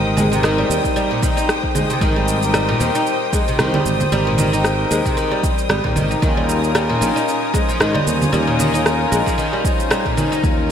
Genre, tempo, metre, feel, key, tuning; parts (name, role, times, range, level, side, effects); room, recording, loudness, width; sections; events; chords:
organic downtempo; 114 BPM; 4/4; swing 56% on 16ths; A4 = 440 Hz
hand-pumped harmonium; accompaniment; 0.0-10.7 s; Ab3 to C5; -22 LUFS; equal; sidechain pumping, ping-pong delay
rich symphonic string section; sustained chords; 0.0-10.7 s; Db4 to Eb6; -25 LUFS; left 2 dB; sidechain pumping
sustaining fretless electric bass; bass; 0.0-10.7 s; Ab1 to Ab2; -21 LUFS; equal; lush chorus, sidechain pumping
oud; arpeggios; 0.2-10.4 s; Bb2 to Eb4; -21 LUFS; equal; ping-pong delay
electronic congas, shaker and rim click; drums; 0.2-10.6 s; -23 LUFS; right 2 dB; overdrive
electronic kick drum; drums; 0.8-10.6 s; -21 LUFS; equal; overdrive
wet lush hall reverb, RT60 2.4 s; bright 1980s-style digital production; -15 LUFS; side -8 dB against mid
0.0-10.7 A section
0.0 Abmaj7; 6.2 Eb7sus4